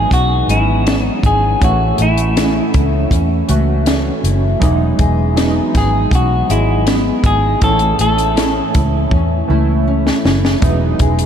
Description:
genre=indie pop, bedroom pop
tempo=80 BPM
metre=4/4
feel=straight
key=E major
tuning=A4 = 440 Hz
part: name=semi-hollow electric guitar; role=melody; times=0.0-8.7 s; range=E4 to A4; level=-19 LUFS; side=left 1 dB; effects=lush chorus, analog delay
part: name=chorused retro synth keys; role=accompaniment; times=0.0-11.3 s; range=E3 to D#5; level=-21 LUFS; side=right 4 dB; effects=tremolo, cassette tape
part: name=nylon-string guitar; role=accompaniment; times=0.0-11.3 s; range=A2 to E4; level=-20 LUFS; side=left 4 dB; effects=wide subtle chorus, warbly pitch drift
part: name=vintage muted fingered electric bass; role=bass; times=0.0-11.3 s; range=E1 to E2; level=-16 LUFS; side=equal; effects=none
part: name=compact cocktail drum kit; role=drums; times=0.1-11.3 s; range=hi-hat, kick drum, snare drum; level=-18 LUFS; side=equal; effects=none
room=moderate cathedral reverb, RT60 5.9 s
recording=dreamy mix soaked in reverb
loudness=-12 LUFS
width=side -8 dB against mid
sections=0.0-11.3 A section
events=drum fill 9.1-10.6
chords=0.0 Emaj7; 1.6 A; 4.6 Emaj7; 7.6 A; 10.6 Emaj7

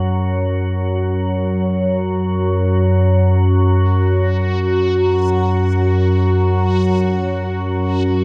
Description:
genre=dark ambient drone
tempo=free time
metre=none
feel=none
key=unclear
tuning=A4 = 441 Hz
part: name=organ-like drone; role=drone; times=0.0-8.2 s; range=F#2 to F#3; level=-17 LUFS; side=equal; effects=ensemble chorus, built-in reverb, phaser
part: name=backwards swelling texture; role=texture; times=4.2-8.2 s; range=F#4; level=-22 LUFS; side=equal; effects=built-in reverb, shimmer reverb
room=wet cathedral reverb, RT60 5.5 s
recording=in a vast, echoing space, cassette tape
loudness=-17 LUFS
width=mono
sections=0.0-8.2 A section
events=none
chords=none

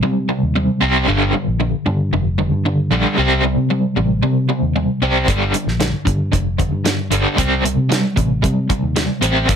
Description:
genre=classic rock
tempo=114 BPM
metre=4/4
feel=straight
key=unclear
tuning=A4 = 439 Hz
part: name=crunchy overdriven guitar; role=riff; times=0.0-9.6 s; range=G2 to C4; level=-17 LUFS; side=equal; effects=tremolo
part: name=vintage muted fingered electric bass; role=bass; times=0.0-9.6 s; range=F1 to C3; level=-20 LUFS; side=equal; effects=none
part: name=damped 70s drum kit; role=drums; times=5.3-9.6 s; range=hi-hat, kick drum, snare drum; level=-19 LUFS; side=equal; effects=none
room=light reverb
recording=none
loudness=-15 LUFS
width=side -7 dB against mid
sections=0.0-9.6 A section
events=none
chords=0.0 Cm; 1.1 Gm; 3.2 C5; 5.3 G5; 7.4 C5

